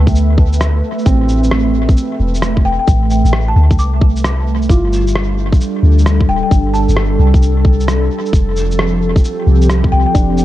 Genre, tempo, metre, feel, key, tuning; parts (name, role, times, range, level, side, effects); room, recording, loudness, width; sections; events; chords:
future garage; 132 BPM; 4/4; swing 65% on 16ths; A minor; A4 = 440 Hz
felt-muted upright piano; accompaniment; 0.0-10.4 s; C4 to F4; -22 LUFS; right 2 dB; sidechain pumping, analog delay
airy breathy pad; sustained chords; 0.0-10.4 s; F3 to E5; -18 LUFS; right 1 dB; chorus, vintage 12-bit sampler grit, sidechain pumping
soft 808-style bass; bass; 0.0-10.4 s; D1 to D2; -13 LUFS; equal; sidechain pumping
electronic kick drum; drums; 0.1-10.3 s; -11 LUFS; equal
electronic shaker and rim click; drums; 0.1-10.4 s; -23 LUFS; equal; tape echo
marimba with medium mallets; melody; 2.7-7.1, 9.9-10.1 s; G5 to D6; -21 LUFS; left 4 dB; tape echo
light reverb; echo-heavy mix, cassette tape; -10 LUFS; side -14 dB against mid
0.0-10.4 A section
0.0 Am; 4.7 G9sus4; 8.3 F